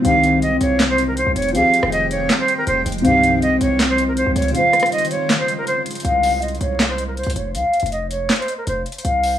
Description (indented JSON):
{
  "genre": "hip hop, trap",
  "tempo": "160 BPM",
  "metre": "4/4",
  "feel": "half-time",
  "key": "unclear",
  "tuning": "A4 = 440 Hz",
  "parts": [
    { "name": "bright silver concert flute", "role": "melody", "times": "0.0-9.4 s", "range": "Bb4 to F5", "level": "-18 LUFS", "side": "right 1 dB", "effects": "low-pass filter, analog delay" },
    { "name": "dark concert grand piano", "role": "accompaniment", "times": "0.0-6.1 s", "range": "C3 to C5", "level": "-21 LUFS", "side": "left 2 dB", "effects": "none" },
    { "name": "granular cloud pad", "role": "sustained chords", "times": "0.0-6.0 s", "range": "C4 to G5", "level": "-27 LUFS", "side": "right 1 dB", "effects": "built-in reverb" },
    { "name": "mellow synth brass", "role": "stabs", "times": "0.0-0.4, 3.0-3.4 s", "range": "C2 to Eb3", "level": "-22 LUFS", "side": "equal", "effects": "chorus" },
    { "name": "distorted 808-style bass", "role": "bass", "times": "0.0-9.4 s", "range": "F1 to Db2", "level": "-24 LUFS", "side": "equal", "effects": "distortion" },
    { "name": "trap drum kit", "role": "drums", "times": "0.0-9.3 s", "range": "handclaps, hi-hat, rim click, snare drum", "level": "-22 LUFS", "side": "equal", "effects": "overdrive" }
  ],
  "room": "digital ambience",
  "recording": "dry, gritty hardware recording, vinyl crackle",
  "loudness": "-15 LUFS",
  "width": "side -10 dB against mid",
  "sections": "0.0-6.0 A section; 6.0-9.4 B section",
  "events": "kick muted 4.5-6.0",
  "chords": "0.0 Cm; 1.5 Fmadd9; 3.0 Cm; 4.5 Dbmaj7; 6.0 F5"
}